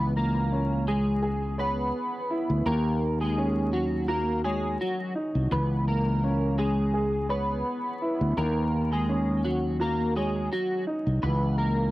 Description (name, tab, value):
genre	hip hop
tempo	84 BPM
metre	4/4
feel	swing 54% on 16ths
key	C# dorian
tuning	A4 = 439 Hz
part	clean electric guitar	melody	0.0-11.9 s	F#3 to B4	-29 LUFS	equal	analog chorus, high-pass filter, low-pass filter, cassette tape, analog delay
part	dark upright piano	accompaniment	0.0-11.9 s	D#3 to C#5	-32 LUFS	right 1 dB	high-pass filter, low-pass filter
part	fretless electric bass	bass	0.0-11.9 s	B#1 to D#2	-27 LUFS	equal	transformer saturation
room	light reverb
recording	home recording on cassette, vinyl crackle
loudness	-24 LUFS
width	side -17 dB against mid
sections	0.0-11.9 A section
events	none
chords	0.0 C#m; 2.7 D#m7; 5.5 C#m; 8.4 D#m7; 11.2 C#m